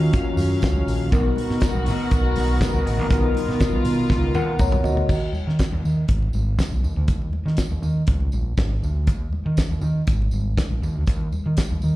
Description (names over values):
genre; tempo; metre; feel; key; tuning
disco; 120 BPM; 4/4; straight; unclear; A4 = 440 Hz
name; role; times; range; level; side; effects
tine electric piano; accompaniment; 0.0-5.3 s; B2 to A#5; -24 LUFS; left 2 dB; medium stereo tremolo
dark studio string section; sustained chords; 0.0-5.1 s; Eb3 to F5; -28 LUFS; equal; none
overdriven fingered electric bass; bass; 0.0-12.0 s; Ab1 to Eb3; -22 LUFS; equal; none
damped 70s drum kit; drums; 0.1-11.7 s; crash cymbal, hi-hat, kick drum, snare drum, toms; -22 LUFS; equal; none
tambourine; percussion; 0.1-11.9 s; none; -45 LUFS; right 5 dB; none
congas; percussion; 0.4-11.9 s; none; -34 LUFS; left 2 dB; none
room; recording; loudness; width
small room reverb; live gig heard through the venue's PA, club reverb; -19 LUFS; side -17 dB against mid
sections
0.0-5.1 A section; 5.1-12.0 B section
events
drum fill 4.1-5.1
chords
0.0 Ebm9; 1.1 Bmaj7; 5.1 Ebm; 6.1 Abm; 6.8 N.C.; 8.1 Db5; 9.1 N.C.; 10.1 Absus2; 10.8 N.C.